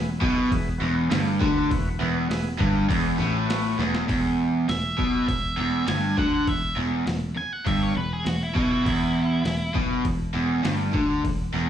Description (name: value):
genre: blues rock power trio and southern rock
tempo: 101 BPM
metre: 4/4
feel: straight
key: unclear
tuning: A4 = 442 Hz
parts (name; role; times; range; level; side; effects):
- overdriven tonewheel organ; sustained chords; 0.0-4.0 s; B3 to B4; -35 LUFS; right 3 dB; slow rotary speaker
- overdriven electric guitar; riff; 0.0-11.7 s; E2 to D3; -24 LUFS; equal; slapback echo
- picked electric bass; bass; 0.0-11.7 s; E1 to D2; -28 LUFS; equal; none
- boom bap sampler-style drum kit; drums; 0.2-11.4 s; hi-hat, kick drum, snare drum; -28 LUFS; equal; none
- octave-fuzz lead guitar; melody; 4.7-9.7 s; E4 to G#5; -30 LUFS; right 1 dB; distortion
room: light reverb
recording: live gig heard through the venue's PA, club reverb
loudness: -21 LUFS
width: side -10 dB against mid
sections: 0.0-4.1 A section; 4.1-11.7 B section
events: drum fill 3.8; lead electric guitar solo 4.1-11.7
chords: 0.0 E; 4.1 E5